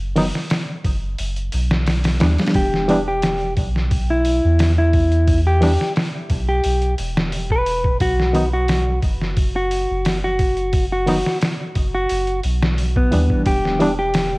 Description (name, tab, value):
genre	trip hop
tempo	88 BPM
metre	4/4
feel	straight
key	E minor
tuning	A4 = 440 Hz
part	soft dub sub bass	bass	0.0-14.4 s	E1 to E2	-20 LUFS	equal	none
part	barky reed electric piano	accompaniment	0.2-13.9 s	D#3 to D#4	-21 LUFS	equal	overdrive, tremolo, tape echo
part	trip hop sampler-style drum kit	drums	0.2-14.3 s	hi-hat, kick drum, snare drum	-21 LUFS	equal	studio ambience
part	mellow electric guitar	melody	2.6-14.4 s	B3 to B4	-21 LUFS	equal	tape echo
room	light reverb, digital ambience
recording	worn, warbling old tape, cassette tape, vinyl crackle, warbly pitch drift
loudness	-16 LUFS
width	side -24 dB against mid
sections	0.0-14.4 A section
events	none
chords	0.0 B; 2.6 Em; 8.0 B5; 13.5 Em7